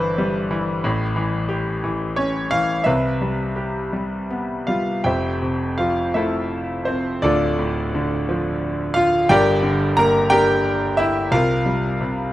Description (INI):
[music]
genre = classical, lyrical solo piano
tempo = 54-62 BPM (dotted quarters)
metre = 6/8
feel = rubato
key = C major, F major from 5.1 s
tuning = A4 = 440 Hz
[part]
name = bright concert grand piano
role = solo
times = 0.0-12.3 s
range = D1 to Bb5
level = -18 LUFS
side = equal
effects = none
[sound]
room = moderate recital hall reverb, RT60 1.3 s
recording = dark, warm production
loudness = -18 LUFS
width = side -15 dB against mid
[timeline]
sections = 0.0-5.1 A section; 5.1-12.3 B section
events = none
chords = 0.0 G6; 0.8 A7; 2.9 Cmaj7; 5.1 Fmaj9; 7.2 Dm; 9.3 Gm; 11.3 C7sus4